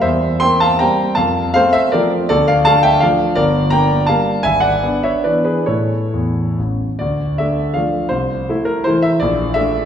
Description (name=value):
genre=classical, romantic triple-time dance for piano with dotted rhythms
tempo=126-181 BPM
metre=3/4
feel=rubato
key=D minor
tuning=A4 = 441 Hz
part: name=clear concert grand piano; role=solo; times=0.0-9.9 s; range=G1 to C6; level=-13 LUFS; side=equal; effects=none
room=wet recital hall reverb, RT60 1.8 s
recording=heard from further back in the room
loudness=-13 LUFS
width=side -8 dB against mid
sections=0.0-7.0 A section; 7.0-9.9 B section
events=none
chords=0.0 C7/E; 1.2 F; 2.3 Dm; 3.4 Gm; 4.5 E7/G#; 5.7 A; 7.0 Dm; 8.1 Am/C; 9.2 Bbmaj7